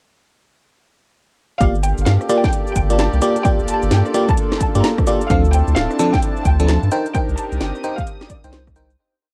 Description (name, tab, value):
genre	UK garage, two-step garage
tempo	130 BPM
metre	4/4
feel	swing 62% on 16ths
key	G minor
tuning	A4 = 441 Hz
part	clear studio violin section	melody	1.6-8.8 s	C5 to Bb5	-27 LUFS	equal	cassette tape, analog delay
part	warm analog pad	sustained chords	1.6-9.0 s	Bb3 to Bb4	-29 LUFS	equal	chorus, sidechain pumping, cassette tape
part	FM electric piano	stabs	1.6-8.9 s	F3 to G5	-22 LUFS	equal	chorus, cassette tape, tape echo
part	saturated sub bass	bass	1.6-9.0 s	D1 to G2	-19 LUFS	equal	none
part	electronic kick drum	drums	1.6-8.7 s	none	-22 LUFS	equal	overdrive, cassette tape
part	house drum kit	drums	1.6-9.0 s	cabasa, hi-hat, rim click, snare drum	-27 LUFS	equal	overdrive, cassette tape
part	dark chamber string section	texture	1.6-9.0 s	C4 to Eb6	-32 LUFS	equal	sidechain pumping, cassette tape
room	light reverb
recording	home recording on cassette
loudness	-17 LUFS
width	mono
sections	1.6-9.0 drop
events	drop 1.6-9.0; fade-out 6.5-9.0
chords	1.6 Gm7; 5.3 Dm7; 6.9 Cm7